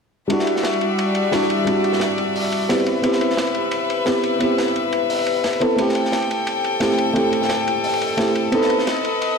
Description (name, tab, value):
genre	liquid drum and bass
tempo	175 BPM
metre	4/4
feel	swing 54% on 16ths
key	E minor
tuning	A4 = 445 Hz
part	felt-muted upright piano	accompaniment	0.3-9.4 s	G3 to A4	-20 LUFS	right 1 dB	low-pass filter, tape echo
part	bright chamber string section	sustained chords	0.3-9.4 s	G3 to G5	-21 LUFS	left 3 dB	none
part	crunchy breakbeat drum kit	drums	0.3-9.3 s	hi-hat, ride cymbal, snare drum	-28 LUFS	right 1 dB	high-pass filter on cymbals, high-pass filter on hats, high-pass filter on snare, high-pass filter on room
part	electronic hi-hat	drums	0.3-9.3 s	none	barely audible	none	none
room	wet plate reverb, RT60 1.1 s, small room ambience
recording	dreamy mix soaked in reverb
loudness	-17 LUFS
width	side -5 dB against mid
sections	0.3-9.4 A section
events	filter sweep on felt piano 0.3-9.4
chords	0.3 Em9; 2.9 Cmaj7; 5.8 Am7; 8.5 B7b9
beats	| 0.30 0.64 0.98 1.33 | 1.67 2.01 2.35 2.70 | 3.04 3.38 3.73 4.07 | 4.41 4.75 5.10 5.44 | 5.78 6.13 6.47 6.81 | 7.16 7.50 7.84 8.18 | 8.53 8.87 9.21